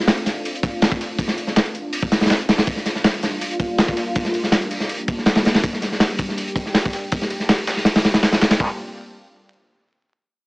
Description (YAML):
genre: drum and bass, jungle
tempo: 162 BPM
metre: 4/4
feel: straight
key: D minor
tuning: A4 = 440 Hz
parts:
  - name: lush unison pad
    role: sustained chords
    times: 0.0-8.8 s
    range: G3 to G4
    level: -28 LUFS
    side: equal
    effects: chorus, phaser
  - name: crunchy breakbeat drum kit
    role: drums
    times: 0.0-8.7 s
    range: china cymbal, hi-hat, kick drum, snare drum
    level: -18 LUFS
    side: equal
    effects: none
  - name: dusty soul sampler-style drum kit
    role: drums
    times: 0.1-8.6 s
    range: hi-hat, snare drum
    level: -26 LUFS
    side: equal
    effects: high-pass filter on hats, high-pass filter on snare
room: light reverb, studio ambience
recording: vinyl crackle, small speaker sound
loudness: -17 LUFS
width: side -31 dB against mid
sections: 0.0-8.6 A section; 8.6-10.1 B section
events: none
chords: 0.0 Dm7; 2.7 Gm7; 8.6 Dm7